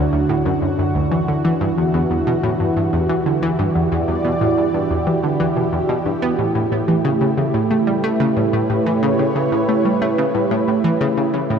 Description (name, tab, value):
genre	ambient, sequencer-driven space music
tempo	91 BPM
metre	4/4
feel	straight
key	E dorian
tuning	A4 = 441 Hz
part	lush unison pad	sustained chords	0.0-11.6 s	D3 to D5	-18 LUFS	right 2 dB	chorus
part	analog pluck	riff	0.0-11.6 s	D2 to B3	-20 LUFS	equal	chorus, tape echo
room	wet cathedral reverb, RT60 5.4 s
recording	in a vast, echoing space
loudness	-16 LUFS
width	side -7 dB against mid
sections	0.0-11.6 A section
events	none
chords	0.0 Dmaj7; 1.1 Em7; 6.4 A7